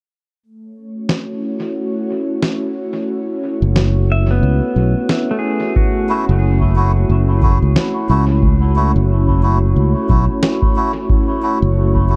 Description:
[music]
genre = ambient dub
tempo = 90 BPM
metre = 4/4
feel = swing 59% on 16ths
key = F# minor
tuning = A4 = 440 Hz
[part]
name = airy breathy pad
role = sustained chords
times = 0.4-12.2 s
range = A3 to C#5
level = -23 LUFS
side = equal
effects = chorus
[part]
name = electronic snare drum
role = drums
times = 1.1-10.6 s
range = none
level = -23 LUFS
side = equal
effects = dub echo
[part]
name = fingered electric bass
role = bass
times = 3.6-12.2 s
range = F#1 to C#2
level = -16 LUFS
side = equal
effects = none
[part]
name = pedal steel guitar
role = arpeggios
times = 4.1-8.0 s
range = A3 to E5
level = -26 LUFS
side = equal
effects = tape echo
[part]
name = electronic kick drum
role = drums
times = 5.8-12.1 s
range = none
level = -19 LUFS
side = equal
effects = none
[part]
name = melodica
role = stabs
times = 6.1-12.2 s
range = A3 to F#4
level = -24 LUFS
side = equal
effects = dub echo
[sound]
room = digital ambience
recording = dark, warm production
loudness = -16 LUFS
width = mono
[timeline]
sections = 0.4-5.8 A section; 5.8-12.2 B section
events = none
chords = 0.4 F#m7

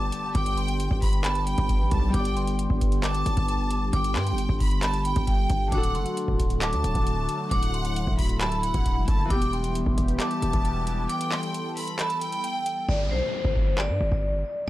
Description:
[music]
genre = hip hop, trap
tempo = 134 BPM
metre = 4/4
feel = half-time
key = G major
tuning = A4 = 440 Hz
[part]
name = vibraphone with hard mallets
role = melody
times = 0.0-14.6 s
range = C5 to D6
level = -30 LUFS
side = equal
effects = low-pass filter
[part]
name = bright studio violin section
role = second line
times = 0.0-12.8 s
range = F#5 to B5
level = -34 LUFS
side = left 1 dB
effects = digital delay
[part]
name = Celtic harp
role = accompaniment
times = 0.0-12.9 s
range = D3 to D5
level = -34 LUFS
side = left 2 dB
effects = low-pass filter
[part]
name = sweeping resonant pad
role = sustained chords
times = 0.0-12.9 s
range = D3 to A4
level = -32 LUFS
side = left 1 dB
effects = chorus
[part]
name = distorted 808-style bass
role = bass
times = 0.0-14.4 s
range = D1 to G2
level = -27 LUFS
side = equal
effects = distortion
[part]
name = impact and downlifter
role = sound effects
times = 0.3, 12.9-14.7 s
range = none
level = -36 LUFS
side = left 1 dB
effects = none
[part]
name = booming analog drum machine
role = drums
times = 0.1-14.3 s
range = handclaps, hi-hat, kick drum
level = -26 LUFS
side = equal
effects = none
[sound]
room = little or no reverb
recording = dark, warm production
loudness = -23 LUFS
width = side -15 dB against mid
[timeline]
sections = 0.0-12.9 A section; 12.9-14.7 B section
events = impact 0.0-0.3; break 11.1-12.9; hi-hats muted 12.9-14.7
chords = 0.0 G; 5.7 D; 9.3 Em; 12.9 G5

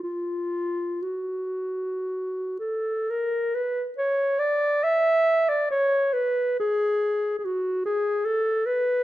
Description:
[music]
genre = classical, free, expressive piece for unaccompanied clarinet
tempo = 48-73 BPM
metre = 3/4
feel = rubato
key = F# minor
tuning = A4 = 440 Hz
[part]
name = mellow clarinet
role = solo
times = 0.0-9.0 s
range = E#4 to E5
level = -23 LUFS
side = equal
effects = none
[sound]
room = moderate large studio reverb, RT60 1.3 s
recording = dark, warm production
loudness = -23 LUFS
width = side -15 dB against mid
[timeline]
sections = 0.0-3.1 A section; 3.1-9.0 B section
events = none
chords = none

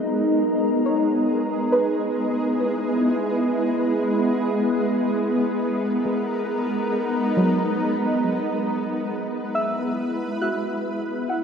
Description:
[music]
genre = ambient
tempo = 69 BPM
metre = 4/4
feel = straight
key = unclear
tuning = A4 = 440 Hz
[part]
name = shimmering ambient pad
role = sustained chords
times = 0.0-11.4 s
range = G#3 to B4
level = -21 LUFS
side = equal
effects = chorus, built-in reverb
[part]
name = soft round pluck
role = arpeggios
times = 0.0-11.4 s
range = F#3 to F#6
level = -28 LUFS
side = right 1 dB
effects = chorus, tape echo
[sound]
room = wet huge ambient reverb, RT60 8.1 s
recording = dreamy mix soaked in reverb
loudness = -20 LUFS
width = side -6 dB against mid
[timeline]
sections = 0.0-11.4 A section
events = fade-out 9.4-11.4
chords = 0.0 G#madd9; 1.3 E; 4.8 G#madd9; 8.2 E

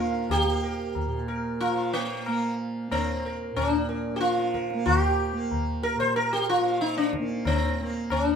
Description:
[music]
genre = indian classical, Hindustani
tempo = 92 BPM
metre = 7/4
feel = straight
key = Bb raga bilaval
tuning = A4 = 440 Hz
[part]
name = sitar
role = melody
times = 0.0-8.4 s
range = Bb3 to C5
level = -26 LUFS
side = equal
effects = none
[part]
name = tanpura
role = drone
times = 0.0-8.4 s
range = Bb2 to Bb3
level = -32 LUFS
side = right 3 dB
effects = none
[part]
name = tabla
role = percussion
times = 0.3-8.3 s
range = none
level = -30 LUFS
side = left 2 dB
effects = none
[sound]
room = wet small room reverb, RT60 0.5 s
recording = minimal, uncompressed stereo recording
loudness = -24 LUFS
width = side -7 dB against mid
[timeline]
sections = 0.0-8.4 A section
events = none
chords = none

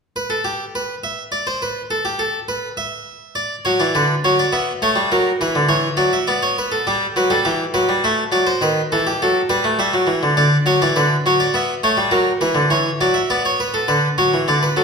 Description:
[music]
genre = classical, baroque-style two-part invention for harpsichord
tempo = 103 BPM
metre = 3/4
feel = straight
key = unclear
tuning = A4 = 440 Hz
[part]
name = harpsichord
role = solo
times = 0.2-14.8 s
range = D3 to E5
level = -16 LUFS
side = equal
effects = none
[sound]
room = wet recital hall reverb, RT60 1.5 s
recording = minimal, uncompressed stereo recording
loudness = -16 LUFS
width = side -5 dB against mid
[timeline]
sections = 0.0-13.9 A section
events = none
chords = 0.0 N.C.; 3.4 Bm; 4.5 C#m7b5/B; 5.1 F#7; 6.3 Bm; 6.9 Em; 8.0 F#m7b5/A; 8.6 B7/D#; 9.8 Em; 10.4 Bm/D; 11.5 C#m7b5/B; 12.1 F#7; 13.3 Bm; 13.9 Bm/D

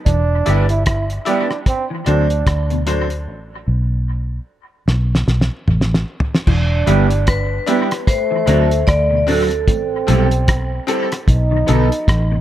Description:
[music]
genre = roots reggae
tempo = 75 BPM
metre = 4/4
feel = swing 58% on 16ths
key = E minor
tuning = A4 = 440 Hz
[part]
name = mellow trombone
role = second line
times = 0.1-12.4 s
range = A3 to E4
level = -23 LUFS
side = right 4 dB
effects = tape echo
[part]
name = electric guitar at the edge of break-up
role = arpeggios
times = 0.1-12.4 s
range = A2 to E3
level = -24 LUFS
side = left 4 dB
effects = ensemble chorus
[part]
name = vintage muted fingered electric bass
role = bass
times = 0.1-12.4 s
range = E1 to D2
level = -17 LUFS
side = equal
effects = none
[part]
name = cloth-damped thuddy drum kit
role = drums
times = 0.1-12.3 s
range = crash cymbal, hi-hat, kick drum, rim click, snare drum, toms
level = -18 LUFS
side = equal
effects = dub echo
[part]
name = mellow electric guitar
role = accompaniment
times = 0.5-11.9 s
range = F#3 to A4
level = -22 LUFS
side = right 6 dB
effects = phaser, tape echo
[part]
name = bright upright piano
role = stabs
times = 0.5-11.9 s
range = B3 to D5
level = -23 LUFS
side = left 6 dB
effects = none
[part]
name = vibraphone with medium hard mallets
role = melody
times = 7.3-10.0 s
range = A4 to D5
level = -19 LUFS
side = left 2 dB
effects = tape echo
[sound]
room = light reverb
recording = none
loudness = -14 LUFS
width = side -12 dB against mid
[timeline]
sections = 0.0-6.5 A section; 6.5-12.4 B section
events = drums muted 3.3-6.5; drum fill 4.9-6.5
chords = 0.1 Em7; 1.7 D7; 3.3 Asus2; 6.5 Em7; 8.1 D7; 9.7 Am7; 11.3 B7

